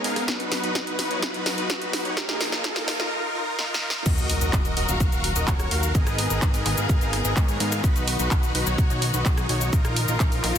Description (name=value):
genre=EDM, festival progressive house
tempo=127 BPM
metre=4/4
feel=straight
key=Eb minor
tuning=A4 = 439 Hz
part: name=clear studio string section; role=sustained chords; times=0.0-10.6 s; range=Eb3 to B4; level=-32 LUFS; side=left 2 dB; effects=sidechain pumping
part: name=big supersaw lead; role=riff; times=0.0-10.6 s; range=Cb4 to F5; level=-28 LUFS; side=equal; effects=cassette tape, sidechain pumping, tape echo
part: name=big-room dance drum kit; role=drums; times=0.0-10.6 s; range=cabasa, crash cymbal, handclaps, hi-hat, rim click, snare drum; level=-27 LUFS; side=equal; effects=soft clipping on snare
part: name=riser and impact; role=sound effects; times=0.0-6.0 s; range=none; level=-32 LUFS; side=right 1 dB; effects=none
part: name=electronic kick drum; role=drums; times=0.3-10.3 s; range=none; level=-22 LUFS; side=equal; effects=high-pass filter on kick, high-pass filter on room
part: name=fat analog bass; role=bass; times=4.1-10.6 s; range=Eb1 to Ab2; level=-27 LUFS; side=equal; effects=sidechain pumping
room=light reverb, digital ambience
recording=dense, heavily limited modern master, high-pass filter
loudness=-21 LUFS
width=side -9 dB against mid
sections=0.0-4.1 A section; 4.1-10.6 B section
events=build-up 0.0-4.1; drum fill 0.0-3.1, 3.6-4.1; riser 0.0-3.1; drop 4.1-10.6; impact 4.1-5.9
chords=0.3 B; 2.2 Bbsus4; 4.1 Ebm; 5.9 Abmadd9; 7.8 B; 9.7 Bbsus4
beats=| 0.28 0.75 1.23 1.70 | 2.17 2.64 3.12 3.59 | 4.06 4.53 5.00 5.48 | 5.95 6.42 6.89 7.37 | 7.84 8.31 8.78 9.26 | 9.73 10.20